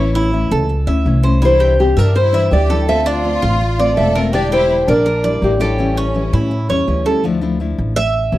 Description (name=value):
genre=latin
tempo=165 BPM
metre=4/4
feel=straight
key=unclear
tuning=A4 = 438 Hz
part: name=nylon-string guitar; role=melody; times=0.0-7.1 s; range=G4 to E5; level=-17 LUFS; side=equal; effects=none
part: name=rich studio violin section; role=second line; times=0.0-7.1 s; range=Bb3 to A4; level=-23 LUFS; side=left 2 dB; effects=none
part: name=nylon-string guitar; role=accompaniment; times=0.0-8.4 s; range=C3 to F4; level=-21 LUFS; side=left 4 dB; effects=none
part: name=Cuban tres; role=arpeggios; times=0.0-8.4 s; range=C#4 to E5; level=-20 LUFS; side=right 4 dB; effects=none
part: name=upright bass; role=bass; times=0.0-8.4 s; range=E1 to A2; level=-17 LUFS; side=equal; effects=none
room=little or no reverb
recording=dry, close 1970s-style studio recording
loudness=-13 LUFS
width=side -15 dB against mid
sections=0.0-7.2 A section; 7.2-8.4 B section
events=Cuban tres solo 7.2-8.4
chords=0.0 A; 1.4 Cadd9; 2.9 Dm7; 4.3 Em7b5; 5.8 A7; 7.2 Dmadd9